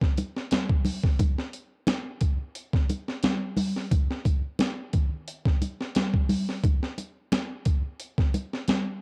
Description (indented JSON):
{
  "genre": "funk",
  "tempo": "88 BPM",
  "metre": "4/4",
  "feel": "straight",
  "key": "none",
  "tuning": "none",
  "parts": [
    { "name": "breakbeat sampler-style drum kit", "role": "drums", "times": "0.0-8.9 s", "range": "hi-hat, kick drum, snare drum", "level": "-28 LUFS", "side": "equal", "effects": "cassette tape" },
    { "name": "congas", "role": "percussion", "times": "0.2-8.8 s", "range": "none", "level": "-31 LUFS", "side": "equal", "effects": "none" }
  ],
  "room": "digital ambience",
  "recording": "home recording on cassette",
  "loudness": "-27 LUFS",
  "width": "mono",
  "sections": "0.0-9.0 A section",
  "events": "none",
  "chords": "none",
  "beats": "0.51 | 1.19 1.87 2.55 3.23 | 3.92 4.59 5.28 5.96 | 6.64 7.32 8.00 8.68"
}